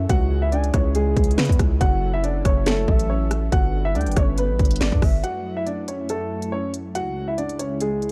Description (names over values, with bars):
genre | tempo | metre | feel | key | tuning
hip hop, drill | 140 BPM | 4/4 | half-time | F# minor | A4 = 440 Hz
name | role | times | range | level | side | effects
gliding portamento lead | second line | 0.0-5.2 s | C#5 to G#5 | -37 LUFS | equal | chorus, digital delay
warm analog pad | sustained chords | 0.0-8.1 s | C#2 to B4 | -34 LUFS | equal | chorus
distorted 808-style bass | bass | 0.0-5.2 s | F#1 to C#3 | -24 LUFS | equal | distortion
warm upright piano | melody | 0.1-8.1 s | G#3 to F#5 | -28 LUFS | equal | none
drill drum kit | drums | 0.1-8.1 s | finger snaps, hi-hat, kick drum, rim click, snare drum | -23 LUFS | equal | none
room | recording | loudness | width
digital ambience | dark, warm production | -22 LUFS | mono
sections
0.0-5.2 A section; 5.2-8.1 B section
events
none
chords
0.1 C#m; 1.8 F#m7; 3.5 Gadd9; 5.2 F#m7; 7.0 C#m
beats
| 0.09 0.52 0.95 1.38 | 1.81 2.24 2.67 3.09 | 3.52 3.95 4.38 4.81 | 5.24 5.67 6.09 6.52 | 6.95 7.38 7.81